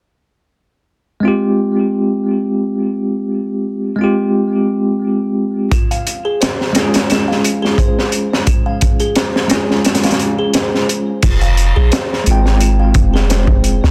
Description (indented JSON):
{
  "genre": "trip hop",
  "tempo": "87 BPM",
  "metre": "4/4",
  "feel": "swing 55% on 16ths",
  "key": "F minor",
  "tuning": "A4 = 439 Hz",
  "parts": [
    { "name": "bell-like tine electric piano", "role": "accompaniment", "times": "1.2-13.9 s", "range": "Ab3 to G5", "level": "-18 LUFS", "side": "equal", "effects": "tremolo, low-pass filter, tape echo" },
    { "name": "music box", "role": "arpeggios", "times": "5.7-13.9 s", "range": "F4 to F5", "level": "-24 LUFS", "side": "equal", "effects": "tape echo" },
    { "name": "crunchy breakbeat drum kit", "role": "drums", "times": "5.7-13.9 s", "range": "crash cymbal, hi-hat, kick drum, snare drum", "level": "-17 LUFS", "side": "equal", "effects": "none" },
    { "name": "soft 808-style bass", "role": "bass", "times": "11.2-13.9 s", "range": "F1 to C2", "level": "-15 LUFS", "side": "equal", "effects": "tube saturation" }
  ],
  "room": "light reverb, small room ambience",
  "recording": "dense, heavily limited modern master",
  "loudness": "-15 LUFS",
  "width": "mono",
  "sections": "0.2-11.2 A section; 11.2-13.9 B section",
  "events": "filter sweep on tine electric piano 0.2-11.2",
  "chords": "0.2 Fmadd9; 5.7 Db; 11.2 Fmadd9"
}